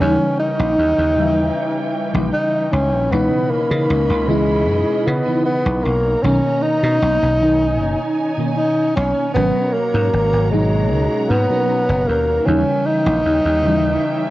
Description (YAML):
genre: vaporwave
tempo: 77 BPM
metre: 4/4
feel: straight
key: G# minor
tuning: A4 = 444 Hz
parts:
  - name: breathy tenor saxophone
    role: melody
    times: 0.0-14.3 s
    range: G#3 to D#4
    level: -18 LUFS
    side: equal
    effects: cassette tape, tape echo
  - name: FM electric piano with soft pad layer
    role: accompaniment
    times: 0.0-14.3 s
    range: B2 to E5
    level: -21 LUFS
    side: equal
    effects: tremolo, ensemble chorus, cassette tape, tape echo
  - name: warm studio string section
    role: sustained chords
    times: 0.0-14.3 s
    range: E3 to B5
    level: -28 LUFS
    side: right 1 dB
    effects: low-pass filter, cassette tape
  - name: dry thumbed slap bass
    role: bass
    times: 0.0-14.0 s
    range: F#1 to C#3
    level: -20 LUFS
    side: equal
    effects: none
room: light reverb, studio reverb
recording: home recording on cassette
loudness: -15 LUFS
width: side -16 dB against mid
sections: 0.0-14.3 A section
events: none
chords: 0.0 D#7b9; 3.1 C#m9; 5.8 G#m11; 12.5 D#7b9